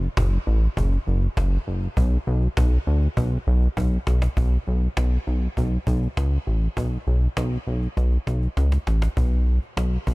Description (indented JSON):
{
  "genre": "synth-pop",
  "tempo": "100 BPM",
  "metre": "4/4",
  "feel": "straight",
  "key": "B minor",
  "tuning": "A4 = 439 Hz",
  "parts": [
    { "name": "chorused synth bass", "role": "bass", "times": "0.0-10.1 s", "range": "F#1 to D2", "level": "-20 LUFS", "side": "equal", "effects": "none" },
    { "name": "cajon", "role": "drums", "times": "0.0-10.1 s", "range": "none", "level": "-30 LUFS", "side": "equal", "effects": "none" }
  ],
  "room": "small room ambience",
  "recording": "none",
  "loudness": "-20 LUFS",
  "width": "side -23 dB against mid",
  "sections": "0.0-4.4 A section; 4.4-9.2 B section",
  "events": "drum fill 3.8-4.4, 8.0-9.2",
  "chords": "none",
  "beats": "0.17 0.77 1.37 | 1.97 2.57 3.17 3.77 | 4.37 4.97 5.57 6.17 | 6.77 7.37 7.97 8.57 | 9.17 9.77"
}